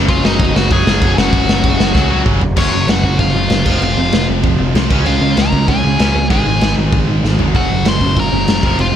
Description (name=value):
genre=punk rock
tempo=193 BPM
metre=4/4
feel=straight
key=unclear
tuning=A4 = 439 Hz
part: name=distorted electric guitar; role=riff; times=0.0-9.0 s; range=F2 to Db4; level=-18 LUFS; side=right 1 dB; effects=distortion
part: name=high-gain distorted guitar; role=riff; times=0.0-9.0 s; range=F2 to Db4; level=-21 LUFS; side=equal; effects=distortion
part: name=growling picked electric bass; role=bass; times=0.0-9.0 s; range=F1 to Db2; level=-18 LUFS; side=equal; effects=overdrive
part: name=nasal lead guitar with a parked wah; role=melody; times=0.1-9.0 s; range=Db4 to C6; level=-19 LUFS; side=left 2 dB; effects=overdrive, ping-pong delay
part: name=raw garage drum kit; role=drums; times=0.1-8.9 s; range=crash cymbal, kick drum, snare drum, toms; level=-15 LUFS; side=equal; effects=none
room=little or no reverb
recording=none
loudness=-11 LUFS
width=side -9 dB against mid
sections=0.0-2.6 A section; 2.6-9.0 B section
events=drum fill 1.9-2.6, 7.2-7.5; half time 2.6-9.0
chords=0.0 Gb5; 3.7 F5; 4.9 Db; 6.3 Ab5; 7.5 Gb